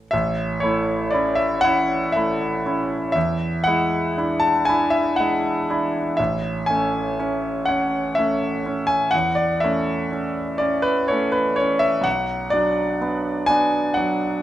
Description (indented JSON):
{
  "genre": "classical, romantic nocturne for solo piano",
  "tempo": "39-43 BPM (dotted quarters)",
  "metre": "12/8",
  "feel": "rubato",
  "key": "A major",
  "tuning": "A4 = 443 Hz",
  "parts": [
    { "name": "clear concert grand piano", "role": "solo", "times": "0.0-14.4 s", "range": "A1 to A5", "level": "-19 LUFS", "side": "equal", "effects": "none" }
  ],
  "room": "light reverb",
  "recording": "close, detailed microphones",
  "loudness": "-19 LUFS",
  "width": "side -12 dB against mid",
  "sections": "0.1-14.4 A section",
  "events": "none",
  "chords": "0.1 A; 3.2 E7; 6.2 A; 12.1 Bm",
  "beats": "| 0.13 1.65 3.15 4.68 | 6.19 7.68 9.13 10.60 | 12.06 13.48"
}